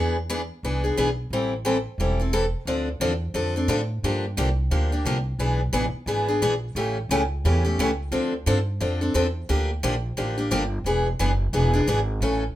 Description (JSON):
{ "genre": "acoustic string swing (jazz manouche)", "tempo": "176 BPM", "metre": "4/4", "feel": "swing 60% on 8ths", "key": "D minor", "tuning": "A4 = 443 Hz", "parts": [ { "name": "picked steel-string acoustic guitar", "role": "accompaniment", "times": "0.0-12.4 s", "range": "C#3 to A4", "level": "-24 LUFS", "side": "left 1 dB", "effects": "none" }, { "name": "upright bass", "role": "bass", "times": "0.0-12.5 s", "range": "E1 to A2", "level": "-25 LUFS", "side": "right 1 dB", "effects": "none" } ], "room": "light reverb", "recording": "minimal, uncompressed stereo recording", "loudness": "-22 LUFS", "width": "side -14 dB against mid", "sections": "0.0-2.7 A section; 2.7-12.6 B section", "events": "none", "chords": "0.0 E7; 1.3 Am7; 2.7 Dm7; 4.0 Gm7; 5.4 E7; 6.8 A7; 8.1 Dm7; 9.5 Bb6; 10.9 E7" }